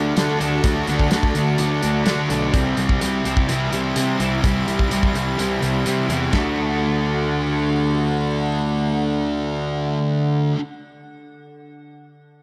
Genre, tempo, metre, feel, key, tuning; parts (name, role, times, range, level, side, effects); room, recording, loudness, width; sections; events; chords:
rock, shoegaze and dream pop; 126 BPM; 4/4; straight; D mixolydian; A4 = 440 Hz
icy glass pad; sustained chords; 0.0-10.5 s; D3 to D6; -35 LUFS; equal; chorus, built-in reverb
electric guitar through a small old amp; arpeggios; 0.0-10.6 s; F#3 to A4; -32 LUFS; equal; ensemble chorus, tape echo
biting overdriven guitar; riff; 0.0-10.6 s; C3 to F#4; -28 LUFS; equal; reverse reverb
thick fuzz guitar; riff; 0.0-10.6 s; C3 to D4; -25 LUFS; equal; distortion, analog chorus
fuzz picked electric bass; bass; 0.0-10.5 s; B1 to D3; -26 LUFS; equal; overdrive
loose indie drum kit; drums; 0.2-6.5 s; china cymbal, hi-hat, kick drum, snare drum; -25 LUFS; equal
moderate concert hall reverb, RT60 2.1 s; -20 LUFS; mono
0.0-6.3 A section; 6.3-10.1 B section
0.0 D; 2.5 Cmaj7; 6.3 D